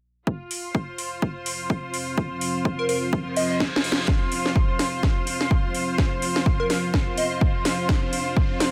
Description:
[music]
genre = bass house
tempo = 126 BPM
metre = 4/4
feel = swing 58% on 16ths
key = unclear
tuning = A4 = 444 Hz
[part]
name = deep dark ambient pad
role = sustained chords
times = 1.6-8.7 s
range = F3 to F5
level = -33 LUFS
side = equal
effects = chorus, built-in reverb, sidechain pumping
[part]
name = electronic kick drum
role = drums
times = 0.3-8.5 s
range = none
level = -25 LUFS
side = equal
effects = high-pass filter on kick
[part]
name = clear studio string section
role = texture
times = 0.3-8.7 s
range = F4 to C6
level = -32 LUFS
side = equal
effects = sidechain pumping
[part]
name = house drum kit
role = drums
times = 0.5-8.7 s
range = hi-hat, snare drum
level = -29 LUFS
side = equal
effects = high-pass filter on hats, high-pass filter on snare
[part]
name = plucky unison lead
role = melody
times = 2.8-3.6, 6.6-7.4 s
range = Bb4 to Eb5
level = -30 LUFS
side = equal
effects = digital delay
[part]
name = reverse cymbal and riser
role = sound effects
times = 3.3-8.7 s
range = none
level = -38 LUFS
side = equal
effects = none
[sound]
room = light reverb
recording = none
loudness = -24 LUFS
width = mono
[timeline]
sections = 0.3-4.1 A section; 4.1-8.7 B section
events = reverse cymbal 3.3-4.1; drum fill 3.6-4.1, 4.1-8.7; build-up 4.1-8.7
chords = 0.3 F5

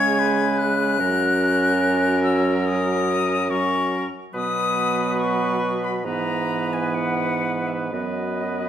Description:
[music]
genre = classical, slow romantic movement for wind quintet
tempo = 59-75 BPM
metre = 4/4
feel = rubato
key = B major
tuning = A4 = 440 Hz
[part]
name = bright concert flute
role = melody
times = 0.0-8.7 s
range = D#5 to G#6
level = -24 LUFS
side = left 5 dB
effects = none
[part]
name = clear oboe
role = second line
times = 0.0-8.7 s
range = A#4 to C#5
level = -29 LUFS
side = left 1 dB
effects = none
[part]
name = clear clarinet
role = accompaniment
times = 0.0-8.7 s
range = B3 to C#4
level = -26 LUFS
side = right 4 dB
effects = none
[part]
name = warm French horn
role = accompaniment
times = 0.0-8.7 s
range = E3 to G#3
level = -28 LUFS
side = right 1 dB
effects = none
[part]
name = clear bassoon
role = bass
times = 0.0-8.7 s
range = F#2 to C#3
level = -25 LUFS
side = right 1 dB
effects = none
[sound]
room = wet recital hall reverb, RT60 1.3 s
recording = none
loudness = -19 LUFS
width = side -10 dB against mid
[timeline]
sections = 0.0-8.7 A section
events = none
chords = 0.0 C#5; 1.0 F#; 4.3 B; 6.0 E/G#; 7.9 B/F#

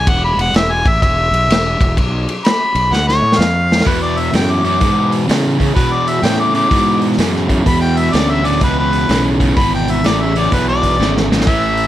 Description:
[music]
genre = blues rock power trio and southern rock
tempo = 126 BPM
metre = 4/4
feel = swing 65% on 8ths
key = E mixolydian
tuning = A4 = 440 Hz
[part]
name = warm harmonica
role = melody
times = 0.0-11.9 s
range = B4 to D6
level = -17 LUFS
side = left 1 dB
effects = overdrive
[part]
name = fuzz fingered electric bass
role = bass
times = 0.0-11.9 s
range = E1 to C#3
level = -18 LUFS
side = equal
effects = overdrive
[part]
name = vintage drum kit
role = drums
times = 0.1-11.9 s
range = hi-hat, kick drum, ride cymbal, snare drum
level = -17 LUFS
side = equal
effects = none
[part]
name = cranked stack guitar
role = riff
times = 3.9-11.9 s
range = E2 to E3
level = -17 LUFS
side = right 1 dB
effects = overdrive
[sound]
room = light reverb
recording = none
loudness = -12 LUFS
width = side -13 dB against mid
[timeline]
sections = 0.0-3.9 A section; 3.9-11.9 B section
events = harmonica solo 0.0-3.9; drum fill 2.9-3.9, 11.0-11.5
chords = 0.1 E5; 2.0 Bm9; 3.4 N.C.; 3.9 E7

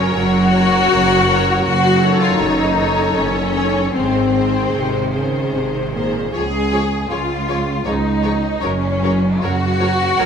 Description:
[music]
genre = classical, slow romantic movement for string orchestra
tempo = 77 BPM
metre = 3/4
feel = uneven beats, rubato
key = Db major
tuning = A4 = 442 Hz
[part]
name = clear symphonic violin section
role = melody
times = 0.0-10.3 s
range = C5 to Db5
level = -25 LUFS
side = left 6 dB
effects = none
[part]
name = clear symphonic violin section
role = second line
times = 0.0-10.3 s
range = C4 to Ab4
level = -18 LUFS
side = left 3 dB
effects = none
[part]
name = rich symphonic viola section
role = accompaniment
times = 0.0-10.3 s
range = Eb3 to Bb4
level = -24 LUFS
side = right 1 dB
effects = none
[part]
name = clear symphonic double bass section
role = bass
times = 0.0-10.3 s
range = Gb1 to Db2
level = -23 LUFS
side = right 3 dB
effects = none
[part]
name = rich symphonic cello section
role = bass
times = 0.0-10.3 s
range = Db2 to Db3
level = -20 LUFS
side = right 2 dB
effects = none
[sound]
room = wet scoring stage reverb, RT60 1.9 s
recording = none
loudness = -14 LUFS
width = side -7 dB against mid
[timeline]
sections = 0.0-10.3 A section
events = none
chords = 0.0 Gb; 1.6 Ebm7b5/Gb; 3.9 Ab; 6.3 Db; 8.6 Gb

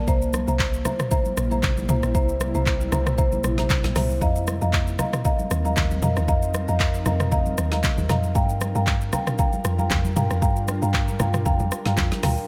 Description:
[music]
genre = amapiano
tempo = 116 BPM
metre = 4/4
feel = swing 55% on 16ths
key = G minor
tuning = A4 = 442 Hz
[part]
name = ethereal airy pad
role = sustained chords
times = 0.0-12.4 s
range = C3 to Bb4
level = -34 LUFS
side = equal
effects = ensemble chorus, built-in reverb, sidechain pumping
[part]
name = marimba with medium mallets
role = stabs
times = 0.0-12.5 s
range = C5 to Bb5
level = -30 LUFS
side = equal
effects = tape echo
[part]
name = deep log drum bass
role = bass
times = 0.0-12.4 s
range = Bb1 to G2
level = -27 LUFS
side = equal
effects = none
[part]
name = deep house drum kit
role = drums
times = 0.1-12.5 s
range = handclaps, hi-hat, kick drum, rim click, shaker, snare drum, toms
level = -26 LUFS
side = equal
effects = none
[part]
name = congas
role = percussion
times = 0.3-12.4 s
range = none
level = -33 LUFS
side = equal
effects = none
[sound]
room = digital ambience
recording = none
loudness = -22 LUFS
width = mono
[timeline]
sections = 0.0-12.5 A section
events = drop 0.0-12.5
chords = 0.1 C7; 4.2 F7sus4; 8.4 Gm7

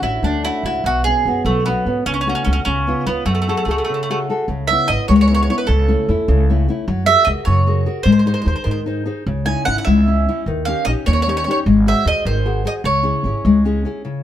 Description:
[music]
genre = italian folk, Italian serenade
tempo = 100 BPM (dotted quarters)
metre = 6/8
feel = straight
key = F# minor, C# minor from 4.5 s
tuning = A4 = 440 Hz
[part]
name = mandolin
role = melody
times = 0.0-13.6 s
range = A3 to G#5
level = -19 LUFS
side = right 3 dB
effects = none
[part]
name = nylon-string guitar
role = accompaniment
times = 0.0-14.2 s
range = B2 to B#4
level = -19 LUFS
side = left 2 dB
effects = none
[part]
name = upright bass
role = bass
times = 0.0-13.8 s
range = G#1 to G#2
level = -20 LUFS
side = equal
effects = none
[sound]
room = moderate studio reverb, RT60 0.9 s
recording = band playing live in one room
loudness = -15 LUFS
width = side -11 dB against mid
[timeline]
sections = 0.0-4.5 A section; 4.5-14.0 B section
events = break 3.9-4.5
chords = 0.0 Dmaj7; 0.8 Bsus2; 2.1 F#m/C#; 2.7 C#7; 3.3 F#madd9; 4.5 C#m7; 5.7 A/C#; 6.9 F#add9; 8.1 G#; 9.3 C#madd9; 10.5 D#7; 11.7 G#7; 12.8 C#m

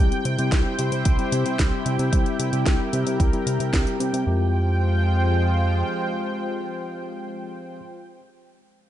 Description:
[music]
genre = italo disco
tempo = 112 BPM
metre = 4/4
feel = straight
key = F harmonic minor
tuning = A4 = 440 Hz
[part]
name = lush unison pad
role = sustained chords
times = 0.0-7.8 s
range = F3 to G5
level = -27 LUFS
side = right 1 dB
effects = chorus
[part]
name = mellow tine electric piano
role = stabs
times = 0.0-7.8 s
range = G3 to G4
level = -29 LUFS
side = left 4 dB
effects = slow stereo tremolo, low-pass filter, tape echo
[part]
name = chorused synth bass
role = bass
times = 0.0-5.8 s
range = C2 to C3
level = -23 LUFS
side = right 1 dB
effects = none
[part]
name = house drum kit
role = drums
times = 0.1-4.2 s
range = hi-hat, snare drum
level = -30 LUFS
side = equal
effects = overdrive, studio ambience
[part]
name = electronic kick drum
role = drums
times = 0.5-3.8 s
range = none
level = -21 LUFS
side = right 1 dB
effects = overdrive, studio ambience
[sound]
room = light reverb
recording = nothing above 11.0 kHz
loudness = -20 LUFS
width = side -12 dB against mid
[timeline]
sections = 0.0-4.3 A section; 4.3-8.6 B section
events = none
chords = 0.0 C; 4.3 Fmadd9

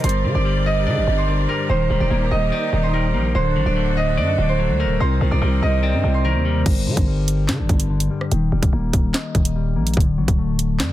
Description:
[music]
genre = hip hop, drill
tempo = 145 BPM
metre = 4/4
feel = half-time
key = G harmonic minor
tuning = A4 = 444 Hz
[part]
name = concert harp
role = melody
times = 0.0-8.4 s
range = Bb4 to Eb5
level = -24 LUFS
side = right 4 dB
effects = none
[part]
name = electric guitar at the edge of break-up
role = accompaniment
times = 0.0-10.9 s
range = G2 to Eb5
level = -23 LUFS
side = left 5 dB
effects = low-pass filter
[part]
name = bright symphonic string section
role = sustained chords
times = 0.0-6.6 s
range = C3 to D5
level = -29 LUFS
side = equal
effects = none
[part]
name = growling 808-style bass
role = bass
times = 0.0-10.9 s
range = D1 to D3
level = -20 LUFS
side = equal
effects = none
[part]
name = drill drum kit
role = drums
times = 0.0-0.1, 6.7-10.9 s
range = crash cymbal, handclaps, hi-hat, kick drum, rim click, snare drum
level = -20 LUFS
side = equal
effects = none
[sound]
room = little or no reverb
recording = dense, heavily limited modern master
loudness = -17 LUFS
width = side -14 dB against mid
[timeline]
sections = 0.0-6.7 A section; 6.7-10.9 B section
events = none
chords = 0.0 Gm; 1.7 Eb; 3.3 D; 5.0 Cm7; 6.7 G5; 8.3 Eb; 10.0 D

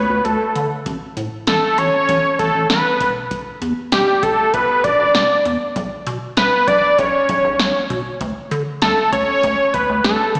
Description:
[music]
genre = synth-pop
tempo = 98 BPM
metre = 4/4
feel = straight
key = unclear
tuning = A4 = 440 Hz
[part]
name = fat analog lead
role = melody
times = 0.0-10.4 s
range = G4 to D5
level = -18 LUFS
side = equal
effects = chorus, digital delay
[part]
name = rubbery square bass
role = bass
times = 0.0-10.4 s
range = E1 to D3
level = -26 LUFS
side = equal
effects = none
[part]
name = electro analog drum machine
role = drums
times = 0.2-10.4 s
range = hi-hat, kick drum, snare drum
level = -24 LUFS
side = equal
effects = none
[sound]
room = moderate lush hall reverb, RT60 2.2 s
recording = played on a big sound system in a bare room, stone room reverb, small speaker sound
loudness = -17 LUFS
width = mono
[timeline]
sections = 0.0-10.4 A section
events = none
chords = 0.0 Bm7/D; 0.9 A; 3.0 Em7; 5.8 Bsus2; 8.2 Bm9/D

